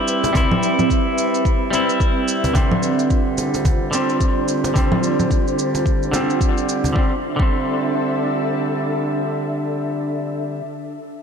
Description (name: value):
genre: organic downtempo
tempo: 109 BPM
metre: 4/4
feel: swing 59% on 16ths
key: D dorian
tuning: A4 = 441 Hz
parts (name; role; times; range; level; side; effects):
- semi-hollow electric guitar; accompaniment; 0.0-10.6 s; D3 to E4; -21 LUFS; right 1 dB; sidechain pumping, low-pass filter, ping-pong delay
- ethereal airy pad; sustained chords; 0.0-9.9 s; C4 to E5; -23 LUFS; left 1 dB; ensemble chorus, built-in reverb, sidechain pumping
- quartz singing bowl; texture; 0.0-7.0 s; none; barely audible; none; none
- shaker and congas; drums; 0.1-6.9 s; none; -23 LUFS; right 1 dB; none
- cajon; percussion; 0.2-6.9 s; none; -27 LUFS; right 1 dB; none
- electronic kick drum; drums; 0.3-7.5 s; none; -19 LUFS; equal; none
room: moderate scoring stage reverb, RT60 2.0 s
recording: dark, warm production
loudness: -17 LUFS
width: side -7 dB against mid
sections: 0.0-7.0 A section; 7.0-9.2 B section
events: filter sweep on clean electric guitar 0.0-7.0; filter sweep on ambient pad 0.0-7.0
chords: 0.0 Cmaj7; 2.6 Dm7; 7.0 D5